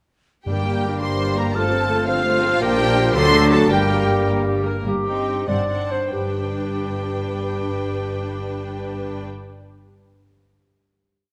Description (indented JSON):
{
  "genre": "classical, dramatic, fast romantic movement for symphony orchestra",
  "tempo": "89-114 BPM (dotted quarters)",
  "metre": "6/8",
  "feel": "rubato",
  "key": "G minor",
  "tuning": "A4 = 441 Hz",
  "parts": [
    { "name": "warm symphonic violin section", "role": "melody", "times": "0.5-9.2 s", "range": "F5 to C6", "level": "-29 LUFS", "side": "equal", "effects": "none" },
    { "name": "clear clarinet", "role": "second line", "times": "0.5-9.2 s", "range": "G4 to D5", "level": "-28 LUFS", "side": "equal", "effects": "none" },
    { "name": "mellow hollow silver concert flute", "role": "second line", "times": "0.5-4.6 s", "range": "D6 to F6", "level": "-30 LUFS", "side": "equal", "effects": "none" },
    { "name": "rich symphonic violin section", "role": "second line", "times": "0.5-9.2 s", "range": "D4 to C5", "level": "-32 LUFS", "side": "equal", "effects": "none" },
    { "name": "clear symphonic viola section", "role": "accompaniment", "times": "0.5-9.2 s", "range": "F#3 to Bb4", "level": "-30 LUFS", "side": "equal", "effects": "none" },
    { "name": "mellow bassoon", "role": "accompaniment", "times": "0.5-4.6 s", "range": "F3 to G3", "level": "-30 LUFS", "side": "equal", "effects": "none" },
    { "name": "warm French horn section", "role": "sustained chords", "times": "0.5-4.7 s", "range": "A3 to G4", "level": "-30 LUFS", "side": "equal", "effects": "none" },
    { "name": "concert harp", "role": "arpeggios", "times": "0.5-10.0 s", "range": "G2 to G5", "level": "-31 LUFS", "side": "equal", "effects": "none" },
    { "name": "clear symphonic cello section", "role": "bass", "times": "0.5-9.2 s", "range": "G2 to D3", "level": "-29 LUFS", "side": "equal", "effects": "none" },
    { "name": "dark symphonic double bass section", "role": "bass", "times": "0.5-9.2 s", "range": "G1 to D2", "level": "-29 LUFS", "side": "equal", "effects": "none" },
    { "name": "timpani", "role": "percussion", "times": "0.5-1.0 s", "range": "G2", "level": "-31 LUFS", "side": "equal", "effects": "none" }
  ],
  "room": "wet recital hall reverb, RT60 1.8 s",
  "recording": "none",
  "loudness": "-20 LUFS",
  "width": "mono",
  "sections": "0.5-4.8 A section; 4.8-6.1 coda; 6.1-8.5 final chord",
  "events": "slowing down 3.1-6.1",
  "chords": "0.5 Gm; 1.6 F/G; 2.6 Bb; 3.1 D7; 3.7 Gm; 4.8 Cm/G; 5.5 D7/G; 6.1 G",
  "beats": "| 0.47 1.02 | 1.55 2.08 | 2.61 3.15 | 3.70 4.27 | 4.85 5.47 | 6.12 6.72 | 7.31 7.91"
}